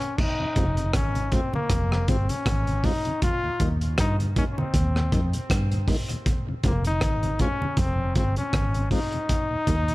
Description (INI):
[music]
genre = dub reggae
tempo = 79 BPM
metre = 4/4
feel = swing 56% on 16ths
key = F minor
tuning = A4 = 442 Hz
[part]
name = bright trombone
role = melody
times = 0.0-9.9 s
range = Bb3 to F4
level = -29 LUFS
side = left 2 dB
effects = dub echo
[part]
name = crunchy breakbeat drum kit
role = drums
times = 0.0-9.9 s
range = crash cymbal, hi-hat, kick drum, rim click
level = -26 LUFS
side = equal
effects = none
[part]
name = congas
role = percussion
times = 0.2-9.9 s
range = none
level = -34 LUFS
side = right 2 dB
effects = none
[part]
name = mellow tonewheel organ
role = accompaniment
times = 0.4-9.9 s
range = Eb2 to F4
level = -33 LUFS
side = left 1 dB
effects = slow rotary speaker
[part]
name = vintage muted picked electric bass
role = bass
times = 0.6-9.9 s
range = F1 to G2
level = -25 LUFS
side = equal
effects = none
[sound]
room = small room ambience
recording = none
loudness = -22 LUFS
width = side -19 dB against mid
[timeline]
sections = 0.2-9.9 A section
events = break 0.0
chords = 0.2 Fm; 3.2 Eb; 6.3 Fm; 9.3 Eb